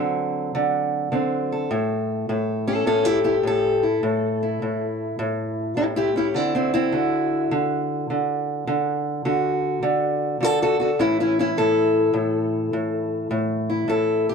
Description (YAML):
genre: acoustic country blues, solo or duo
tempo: 103 BPM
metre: 4/4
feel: swing 67% on 8ths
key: unclear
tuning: A4 = 439 Hz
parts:
  - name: fingerpicked steel-string acoustic guitar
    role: solo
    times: 0.0-14.3 s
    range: A2 to A4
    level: -20 LUFS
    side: equal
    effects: none
room: moderate studio reverb, RT60 0.6 s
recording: dark, warm production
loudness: -20 LUFS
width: side -6 dB against mid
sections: 0.0-14.3 A section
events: none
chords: 0.0 D7; 1.7 A5; 6.3 D7; 11.0 A5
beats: 0.54 1.12 | 1.70 2.28 2.86 3.44 | 4.03 4.61 5.19 5.77 | 6.35 6.93 7.51 8.09 | 8.67 9.25 9.83 10.41 | 10.99 11.57 12.15 12.73 | 13.31 13.89